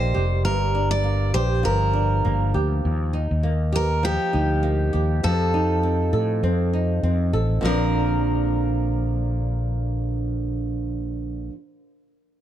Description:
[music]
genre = acoustic pop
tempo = 100 BPM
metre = 4/4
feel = swing 55% on 16ths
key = Bb major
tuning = A4 = 440 Hz
[part]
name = picked steel-string acoustic guitar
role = melody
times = 0.0-11.5 s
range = G4 to D5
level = -26 LUFS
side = right 1 dB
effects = none
[part]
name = flamenco guitar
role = accompaniment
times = 0.0-11.5 s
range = G2 to A4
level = -26 LUFS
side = right 1 dB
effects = none
[part]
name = fretless electric bass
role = bass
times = 0.0-11.5 s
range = F1 to A2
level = -22 LUFS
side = equal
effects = none
[sound]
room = light reverb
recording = dark, warm production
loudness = -20 LUFS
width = side -11 dB against mid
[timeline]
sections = 0.0-7.6 A section; 7.6-10.0 B section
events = none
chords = 0.5 Gm7; 2.8 Ebadd9; 5.2 F7; 7.6 Bbadd9

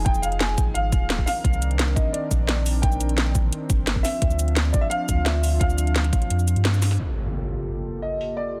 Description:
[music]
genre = liquid drum and bass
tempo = 173 BPM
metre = 4/4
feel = straight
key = G minor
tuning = A4 = 443 Hz
[part]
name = dark grand piano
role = melody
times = 0.0-8.6 s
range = D5 to Ab5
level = -31 LUFS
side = equal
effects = digital delay
[part]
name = warm analog pad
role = sustained chords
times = 0.0-8.6 s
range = Eb3 to Bb4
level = -34 LUFS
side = equal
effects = chorus
[part]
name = warm sub bass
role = bass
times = 0.0-7.0 s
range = Eb1 to G2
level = -25 LUFS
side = equal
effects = none
[part]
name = electronic kick drum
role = drums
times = 0.1-6.2 s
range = none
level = -25 LUFS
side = equal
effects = none
[part]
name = garage drum kit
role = drums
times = 0.1-8.3 s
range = cabasa, hi-hat, snare drum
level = -29 LUFS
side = equal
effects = low-pass filter on snare, low-pass filter on hats, low-pass filter on perc, low-pass filter on cymbals
[part]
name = impact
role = sound effects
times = 7.0-8.4 s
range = none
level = -32 LUFS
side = equal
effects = none
[sound]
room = digital ambience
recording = dense, heavily limited modern master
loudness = -23 LUFS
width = mono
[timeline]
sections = 0.0-7.0 A section; 7.0-8.6 B section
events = drop 0.0-7.0; kick drops out 6.3-7.0; band accent 6.6; impact 7.0-8.4; filter sweep on drum 7.0-8.6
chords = 0.0 Fm7; 1.3 Cm9; 4.0 Dm9; 7.0 Gm9

